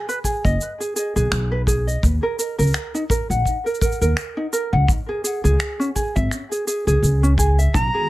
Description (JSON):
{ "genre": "folktronica", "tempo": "84 BPM", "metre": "4/4", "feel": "swing 56% on 16ths", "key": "unclear", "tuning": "A4 = 439 Hz", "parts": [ { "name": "ukulele", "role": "arpeggios", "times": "0.0-8.1 s", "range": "C#4 to F#5", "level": "-23 LUFS", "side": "equal", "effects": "digital delay" }, { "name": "electronic cabasa, finger snaps and percussion blips", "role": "drums", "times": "0.1-7.9 s", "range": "none", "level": "-28 LUFS", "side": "right 1 dB", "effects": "none" }, { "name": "kick drum", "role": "drums", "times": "0.2-7.9 s", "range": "none", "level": "-22 LUFS", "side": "equal", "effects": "none" }, { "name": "upright bass", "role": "bass", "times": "0.4-7.9 s", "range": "F#1 to D#2", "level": "-18 LUFS", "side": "equal", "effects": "none" }, { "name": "breathy bright jazz flute", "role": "melody", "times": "7.7-8.1 s", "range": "A#5", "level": "-20 LUFS", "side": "right 1 dB", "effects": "none" }, { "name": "warbly tape-like pad", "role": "sustained chords", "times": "7.9-8.1 s", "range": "D#3 to F#4", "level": "-32 LUFS", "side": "left 3 dB", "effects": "chorus, built-in reverb, phaser" } ], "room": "light reverb", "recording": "none", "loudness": "-18 LUFS", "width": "side -17 dB against mid", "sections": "0.0-8.1 A section", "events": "none", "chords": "0.0 G#m; 2.0 D#m; 4.9 C#m" }